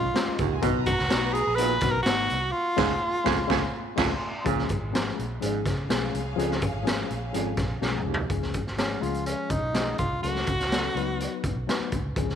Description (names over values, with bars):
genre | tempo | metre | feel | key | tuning
uptempo 1960s-style soul | 125 BPM | 4/4 | straight | Db mixolydian | A4 = 440 Hz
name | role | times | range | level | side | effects
bright tenor saxophone | melody | 0.0-4.0, 8.8-11.6 s | Db4 to Cb5 | -28 LUFS | right 1 dB | none
vibraphone with soft mallets | second line | 0.0-2.5 s | F4 to Cb5 | -37 LUFS | right 13 dB | none
warm studio violin section | second line | 0.0-8.3 s | Cb4 to Bb5 | -38 LUFS | equal | none
reed electric piano | accompaniment | 0.0-12.4 s | F3 to Cb5 | -31 LUFS | left 12 dB | fast tremolo
vintage muted fingered electric bass | bass | 0.0-12.4 s | Ab1 to Db3 | -32 LUFS | right 1 dB | tube saturation
raw garage drum kit | drums | 0.2-12.3 s | crash cymbal, hi-hat, kick drum, snare drum, toms | -28 LUFS | right 1 dB | none
breathy baritone saxophone | riff | 0.4-8.3 s | Eb2 to Cb3 | -30 LUFS | right 13 dB | none
room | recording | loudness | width
light reverb, studio ambience | 1960s-style stereo with parts hard left and right | -24 LUFS | side -8 dB against mid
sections
0.0-4.5 A section; 4.5-8.3 B section; 8.3-12.4 C section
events
band accent 2.5-4.5; drum fill 7.8-8.3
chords
0.0 Db; 0.6 Cb; 2.5 Db; 10.2 Gbm/Db; 11.0 Cb/Db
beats
0.15 | 0.62 1.10 1.58 2.06 | 2.54 3.02 3.50 3.98 | 4.46 4.93 5.42 5.89 | 6.38 6.86 7.34 7.82 | 8.30 8.78 9.26 9.74 | 10.23 10.71 11.19 11.67 | 12.16